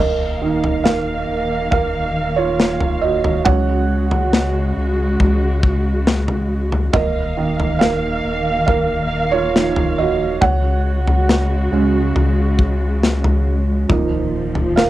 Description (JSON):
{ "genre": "pop ballad", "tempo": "69 BPM", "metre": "4/4", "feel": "straight", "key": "Eb minor", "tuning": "A4 = 439 Hz", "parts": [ { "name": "felt-muted upright piano", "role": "accompaniment", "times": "0.0-14.9 s", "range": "Eb3 to Gb5", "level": "-20 LUFS", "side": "right 5 dB", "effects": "cassette tape" }, { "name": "warm symphonic string section", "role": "sustained chords", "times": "0.0-14.9 s", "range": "Bb2 to F5", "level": "-23 LUFS", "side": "left 1 dB", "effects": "cassette tape" }, { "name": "sub bass with octave", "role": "bass", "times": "0.0-14.9 s", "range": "Eb1 to Db2", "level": "-21 LUFS", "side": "left 1 dB", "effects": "none" }, { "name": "modern studio drum kit", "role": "drums", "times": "0.6-14.9 s", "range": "kick drum, snare drum, toms", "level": "-19 LUFS", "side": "left 1 dB", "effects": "none" } ], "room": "moderate booth ambience, RT60 0.3 s", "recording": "home recording on cassette", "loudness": "-15 LUFS", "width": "side -14 dB against mid", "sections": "0.0-14.9 A section", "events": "felt piano solo 0.0-14.9", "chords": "0.0 Ebsus2; 3.5 Dbsus4; 6.9 Ebsus2; 10.4 Dbsus4; 13.9 Ebsus2", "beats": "0.85 1.72 2.59 | 3.46 4.33 5.20 6.07 | 6.94 7.81 8.68 9.55 | 10.42 11.29 12.16 13.03 | 13.90 14.77" }